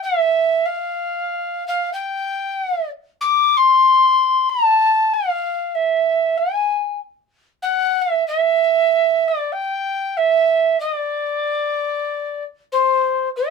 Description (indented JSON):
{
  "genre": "hawaiian",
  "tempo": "95 BPM",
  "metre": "4/4",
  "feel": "swing 60% on 8ths",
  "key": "unclear",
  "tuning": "A4 = 440 Hz",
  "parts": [
    { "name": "mellow soprano recorder", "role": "solo", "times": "0.0-13.5 s", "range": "C5 to D6", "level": "-16 LUFS", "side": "equal", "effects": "none" }
  ],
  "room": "moderate small room reverb, RT60 0.5 s",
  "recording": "minimal, uncompressed stereo recording",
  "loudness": "-16 LUFS",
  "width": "side -5 dB against mid",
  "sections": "0.0-13.3 A section",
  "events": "none",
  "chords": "none",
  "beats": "0.00 | 0.64 1.27 1.91 2.54 | 3.18 3.81 4.45 5.08 | 5.72 6.35 6.99 7.62 | 8.25 8.89 9.52 10.15 | 10.78 11.41 12.05 12.68 | 13.31"
}